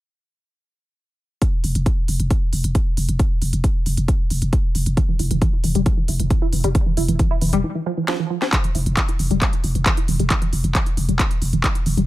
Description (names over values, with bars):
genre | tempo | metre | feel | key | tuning
driving peak-time techno | 135 BPM | 4/4 | straight | E phrygian | A4 = 444 Hz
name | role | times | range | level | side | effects
electronic kick drum | drums | 1.4-11.7 s | none | -20 LUFS | equal | none
techno drum kit | drums | 1.4-12.1 s | handclaps, hi-hat, snare drum | -25 LUFS | equal | sidechain pumping on hats
growling 808-style bass | bass | 1.6-12.1 s | E1 | -21 LUFS | equal | tube saturation, sidechain pumping, low-pass filter
tight sequenced synth | riff | 5.0-12.0 s | E3 to E4 | -24 LUFS | equal | chorus, sidechain pumping, digital delay
room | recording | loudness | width
little or no reverb | none | -17 LUFS | side -16 dB against mid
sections
1.4-8.5 A section; 8.5-12.1 B section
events
break 7.6-8.5; drum fill 8.1-8.5; filter sweep on synth arpeggio sound 8.5-12.1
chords
1.4 N.C.; 8.5 E5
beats
| 1.42 1.86 2.31 2.75 | 3.19 3.64 4.08 4.53 | 4.97 5.42 5.86 6.30 | 6.75 7.19 7.64 8.08 | 8.53 8.97 9.42 9.86 | 10.30 10.75 11.19 11.64